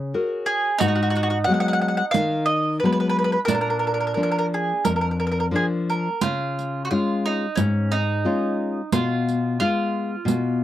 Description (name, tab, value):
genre	italian folk, Italian serenade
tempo	89 BPM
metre	4/4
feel	rubato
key	unclear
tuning	A4 = 437 Hz
part	mandolin	second line	0.0-10.6 s	Db4 to Gb4	-28 LUFS	right 5 dB	none
part	nylon-string guitar	accompaniment	0.0-10.6 s	F2 to Bb4	-23 LUFS	left 2 dB	none
part	mandolin	melody	0.5-6.2 s	Gb4 to Gb5	-22 LUFS	right 1 dB	none
part	riq	percussion	0.8-10.6 s	none	-25 LUFS	right 7 dB	none
room	light reverb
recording	dry, close 1970s-style studio recording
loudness	-20 LUFS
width	side -12 dB against mid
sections	0.0-10.6 A section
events	none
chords	0.0 Gbadd9; 0.8 Abm7; 3.5 Bb; 6.2 Db; 8.9 Fdim/Cb